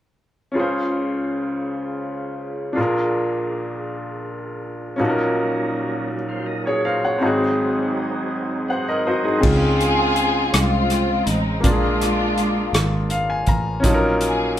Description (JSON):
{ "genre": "slow gospel", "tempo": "54 BPM (dotted quarters)", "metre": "6/8", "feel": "straight", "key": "Db major", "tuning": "A4 = 441 Hz", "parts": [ { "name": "bright upright piano", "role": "accompaniment", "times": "0.5-14.6 s", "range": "Ab1 to Bb5", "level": "-21 LUFS", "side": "left 1 dB", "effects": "none" }, { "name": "mellow French horn section", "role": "sustained chords", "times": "0.5-9.4 s", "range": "Bb2 to C5", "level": "-32 LUFS", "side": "right 2 dB", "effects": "none" }, { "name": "tonewheel organ", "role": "sustained chords", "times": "5.0-9.4 s", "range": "Bb2 to Gb5", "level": "-28 LUFS", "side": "right 3 dB", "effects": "slow rotary speaker, overdrive, chorus vibrato" }, { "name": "muted symphonic string section", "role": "melody", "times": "9.4-14.6 s", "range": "Ab3 to Ab4", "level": "-21 LUFS", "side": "left 1 dB", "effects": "none" }, { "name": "fingered electric bass", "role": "bass", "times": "9.4-14.6 s", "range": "Ab1 to Db2", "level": "-24 LUFS", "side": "right 1 dB", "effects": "none" }, { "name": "warm soul drum kit", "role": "drums", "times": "9.4-14.6 s", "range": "crash cymbal, hi-hat, kick drum, rim click", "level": "-22 LUFS", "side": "equal", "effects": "none" } ], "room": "moderate studio reverb, RT60 0.7 s", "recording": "band playing live in one room", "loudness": "-18 LUFS", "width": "side -11 dB against mid", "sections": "0.5-9.4 A section; 9.4-14.6 B section", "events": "tonewheel organ fill 8.3-9.4; upright piano fill 12.7-13.8", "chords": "0.5 Dbmaj7; 2.8 Bb7; 5.0 Ebm7/Bb; 7.2 Ab7; 9.4 Dbmaj7; 11.6 Bb7; 13.8 Ebm7/Bb" }